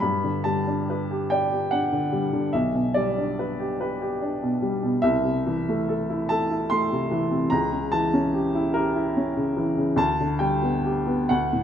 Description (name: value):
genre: classical, romantic nocturne for solo piano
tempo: 48 BPM (dotted quarters)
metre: 12/8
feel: rubato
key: G major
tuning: A4 = 440 Hz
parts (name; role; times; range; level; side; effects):
- warm upright piano; solo; 0.0-11.6 s; B1 to C6; -22 LUFS; equal; none
room: moderate recital hall reverb, RT60 1.5 s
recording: close, detailed microphones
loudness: -22 LUFS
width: side -9 dB against mid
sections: 0.0-11.6 A section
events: none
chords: 0.0 G; 2.5 G/B; 5.0 Am/C; 7.5 C#dim7; 10.0 G/D